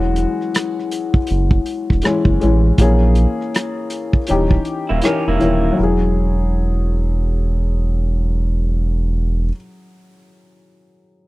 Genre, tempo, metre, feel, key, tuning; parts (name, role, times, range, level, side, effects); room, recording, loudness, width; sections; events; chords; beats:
R&B, neo-soul; 80 BPM; 4/4; swing 61% on 16ths; E major; A4 = 440 Hz
dark upright piano; accompaniment; 0.0-11.3 s; D#3 to A#4; -20 LUFS; left 3 dB
saturated sub bass; bass; 0.0-9.5 s; D#1 to A#1; -16 LUFS; right 1 dB
warm soul drum kit; drums; 0.2-5.6 s; hi-hat, kick drum, rim click; -17 LUFS; equal
electric guitar through a small old amp; second line; 4.9-5.8 s; A#3 to G4; -22 LUFS; right 3 dB; spring reverb
studio ambience; dry, close 1970s-style studio recording; -15 LUFS; side -19 dB against mid
0.0-5.8 A section; 5.8-8.8 B section
0.0 E69; 2.8 A#m7b5; 4.3 D#7b9; 5.8 E69
0.53 1.28 2.03 | 2.78 3.53 4.28 5.03 | 5.78 6.53 7.28 8.03